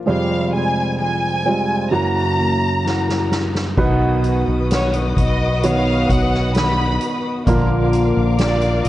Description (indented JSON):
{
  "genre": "pop ballad",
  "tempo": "65 BPM",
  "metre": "4/4",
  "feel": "straight",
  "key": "unclear",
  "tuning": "A4 = 440 Hz",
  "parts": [
    { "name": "warm grand piano", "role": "accompaniment", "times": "0.0-8.9 s", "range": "F1 to Db5", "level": "-20 LUFS", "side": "right 2 dB", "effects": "none" },
    { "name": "fingerpicked steel-string acoustic guitar", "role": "arpeggios", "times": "0.0-8.9 s", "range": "F2 to G4", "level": "-24 LUFS", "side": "left 4 dB", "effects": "digital delay" },
    { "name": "rich studio violin section", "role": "melody", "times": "0.1-8.9 s", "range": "Db5 to B5", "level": "-22 LUFS", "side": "equal", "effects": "digital delay" },
    { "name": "soft-mallet drum kit", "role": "drums", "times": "2.9-8.9 s", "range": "crash cymbal, hi-hat, kick drum, snare drum", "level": "-22 LUFS", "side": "equal", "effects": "none" },
    { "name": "rich studio string section", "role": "sustained chords", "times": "3.8-8.9 s", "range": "F#4 to D#6", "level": "-27 LUFS", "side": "left 4 dB", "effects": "none" },
    { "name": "mellow fretless electric bass", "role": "bass", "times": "3.8-8.9 s", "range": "Bb1 to B1", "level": "-20 LUFS", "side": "equal", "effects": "wide subtle chorus" }
  ],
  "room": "light reverb, small room reverb",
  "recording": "worn, warbling old tape, cassette tape, warbly pitch drift, nothing above 10.3 kHz",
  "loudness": "-15 LUFS",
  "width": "side -14 dB against mid",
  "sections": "0.0-3.8 A section; 3.8-8.9 B section",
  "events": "drum fill 2.8-3.8",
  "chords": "0.1 Fmadd9; 1.9 Gb7; 3.8 B; 7.5 Bb"
}